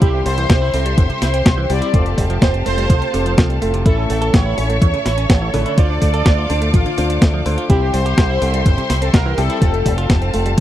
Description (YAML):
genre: italo disco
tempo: 125 BPM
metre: 4/4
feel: straight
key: unclear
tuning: A4 = 444 Hz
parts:
  - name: analog synth brass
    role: melody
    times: 0.0-10.3 s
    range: F4 to D5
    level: -22 LUFS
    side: equal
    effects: chorus, tape echo
  - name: clear symphonic string section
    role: sustained chords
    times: 0.0-10.6 s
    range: G4 to D6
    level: -26 LUFS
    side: left 3 dB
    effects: vintage 12-bit sampler grit
  - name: direct-recorded clean electric guitar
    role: arpeggios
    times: 0.0-10.6 s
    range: C3 to A4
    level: -25 LUFS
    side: right 5 dB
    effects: spring reverb, tape echo
  - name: warm grand piano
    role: stabs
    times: 0.0-10.6 s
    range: A2 to C#5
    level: -24 LUFS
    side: left 2 dB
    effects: none
  - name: fingered electric bass with an envelope filter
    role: bass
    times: 0.0-10.6 s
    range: F1 to E2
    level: -19 LUFS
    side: equal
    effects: none
  - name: clean 12-bit digital drum machine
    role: drums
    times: 0.0-10.6 s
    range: hi-hat, snare drum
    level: -20 LUFS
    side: equal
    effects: overdrive
  - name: electronic kick drum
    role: drums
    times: 0.0-10.6 s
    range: none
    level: -14 LUFS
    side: equal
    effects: overdrive
room: digital ambience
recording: dry, close 1970s-style studio recording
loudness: -13 LUFS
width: side -12 dB against mid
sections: 0.0-10.6 A section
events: none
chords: 0.0 C; 1.9 Fadd9; 3.9 A; 5.8 Dm; 7.7 C; 9.6 Fadd9